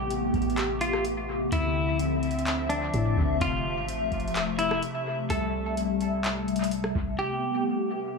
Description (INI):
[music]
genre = hip hop, atmospheric cloud-rap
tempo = 127 BPM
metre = 4/4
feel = half-time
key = A minor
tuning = A4 = 438 Hz
[part]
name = semi-hollow electric guitar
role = melody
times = 0.0-7.6 s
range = D4 to A4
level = -31 LUFS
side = left 1 dB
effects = dub echo
[part]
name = hollow soft pad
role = sustained chords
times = 0.0-8.2 s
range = C3 to E5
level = -28 LUFS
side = left 2 dB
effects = ensemble chorus
[part]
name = soft 808-style bass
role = bass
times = 0.0-7.2 s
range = F1 to A2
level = -32 LUFS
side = equal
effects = none
[part]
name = booming analog drum machine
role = drums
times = 0.1-7.1 s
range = handclaps, hi-hat, kick drum, rim click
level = -34 LUFS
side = equal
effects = dub echo
[sound]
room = light reverb, digital ambience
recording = echo-heavy mix, small room ambience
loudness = -25 LUFS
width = side -4 dB against mid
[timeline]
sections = 0.0-7.2 A section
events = none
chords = 0.0 Am9; 1.5 Dm9; 3.4 Fmaj7; 5.3 C6; 7.2 Am9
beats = 0.10 0.58 1.05 | 1.52 1.99 2.47 2.94 | 3.41 3.88 4.36 4.83 | 5.30 5.77 6.25 6.72 | 7.19 7.66 8.13